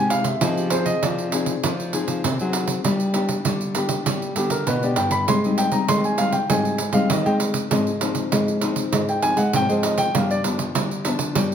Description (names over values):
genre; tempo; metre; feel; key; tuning
samba and choro; 99 BPM; 4/4; straight; unclear; A4 = 440 Hz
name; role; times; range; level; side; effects
dark grand piano; melody; 0.0-10.4 s; G4 to C6; -23 LUFS; right 1 dB; none
nylon-string guitar; accompaniment; 0.0-11.5 s; G2 to Ab4; -25 LUFS; left 4 dB; none
nylon-string guitar; bass; 0.0-11.5 s; G2 to Ab3; -24 LUFS; equal; none
pandeiro; percussion; 0.1-11.5 s; none; -24 LUFS; right 5 dB; none
room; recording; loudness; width
wet large studio reverb, RT60 1.4 s; none; -19 LUFS; side -8 dB against mid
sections
0.0-11.5 A section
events
grand piano solo 0.0-11.5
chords
0.4 Fm7; 2.9 G; 5.3 Abmaj7; 7.7 Fm7/Ab; 10.1 G7